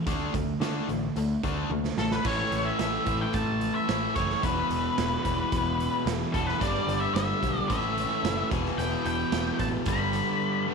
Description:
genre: classic rock.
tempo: 110 BPM.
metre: 4/4.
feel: straight.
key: unclear.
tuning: A4 = 440 Hz.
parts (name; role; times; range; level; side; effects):
biting overdriven guitar; riff; 0.0-10.7 s; E2 to D4; -31 LUFS; left 11 dB; none.
sludgy distorted guitar; riff; 0.0-10.7 s; E2 to D4; -32 LUFS; right 12 dB; overdrive.
picked electric bass; bass; 0.1-10.2 s; E1 to D3; -33 LUFS; equal; none.
raw garage drum kit; drums; 0.1-10.3 s; crash cymbal, hi-hat, kick drum, snare drum, toms; -33 LUFS; right 4 dB; none.
octave-fuzz lead guitar; melody; 2.0-10.6 s; A4 to B5; -30 LUFS; left 1 dB; distortion, slapback echo.
tonewheel organ; sustained chords; 6.6-10.7 s; B3 to E5; -40 LUFS; equal; none.
room: moderate echo chamber reverb, RT60 1.2 s, small room ambience.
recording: 1960s-style stereo with parts hard left and right.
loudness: -25 LUFS.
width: side -5 dB against mid.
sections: 0.0-2.2 A section; 2.2-10.7 B section.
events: drum fill 1.7-2.2.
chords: 0.1 D5; 2.2 A5; 4.4 E5; 6.6 G; 7.7 A; 8.5 Em; 9.9 G.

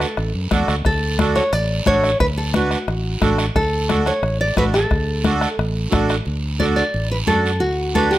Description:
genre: latin, cumbia.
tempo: 178 BPM.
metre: 4/4.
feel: straight.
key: D major.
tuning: A4 = 438 Hz.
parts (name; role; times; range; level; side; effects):
nylon-string guitar; melody; 0.0-8.2 s; F#4 to D5; -21 LUFS; equal; none.
accordion; accompaniment; 0.0-8.2 s; D4 to B4; -22 LUFS; right 4 dB; none.
fingered electric bass; bass; 0.0-8.2 s; A1 to F#2; -22 LUFS; equal; none.
bombo; percussion; 0.0-6.3 s; none; -24 LUFS; left 2 dB; none.
guiro; percussion; 0.0-8.2 s; none; -29 LUFS; right 4 dB; none.
congas; percussion; 0.2-8.1 s; none; -24 LUFS; left 3 dB; none.
room: light reverb.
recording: close, detailed microphones.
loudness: -16 LUFS.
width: side -14 dB against mid.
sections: 0.0-6.3 A section; 6.3-8.2 B section.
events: none.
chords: 0.0 D.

